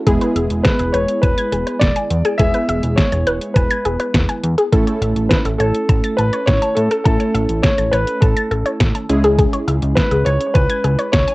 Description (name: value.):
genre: synth-pop.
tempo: 103 BPM.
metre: 4/4.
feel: straight.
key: unclear.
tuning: A4 = 440 Hz.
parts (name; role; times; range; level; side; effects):
warm analog keys; accompaniment; 0.0-11.3 s; G#3 to A4; -22 LUFS; right 1 dB; chorus.
wide unison pluck; arpeggios; 0.1-11.3 s; G#4 to A6; -21 LUFS; left 2 dB; phaser, analog delay.
fat analog bass; bass; 0.1-11.3 s; E1 to A2; -20 LUFS; equal; none.
detuned 8-bit digital drum machine; drums; 0.1-11.3 s; hi-hat, kick drum, snare drum; -16 LUFS; equal; cassette tape.
warm grand piano; melody; 0.6-11.3 s; A4 to E5; -20 LUFS; equal; cassette tape.
room: light reverb.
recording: home recording on cassette.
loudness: -14 LUFS.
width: side -21 dB against mid.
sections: 0.0-11.3 A section.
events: none.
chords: 0.1 E; 4.7 A; 9.1 C#m.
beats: | 0.07 0.65 1.23 1.81 | 2.40 2.98 3.56 4.14 | 4.73 5.31 5.89 6.47 | 7.06 7.64 8.22 8.80 | 9.39 9.97 10.55 11.13.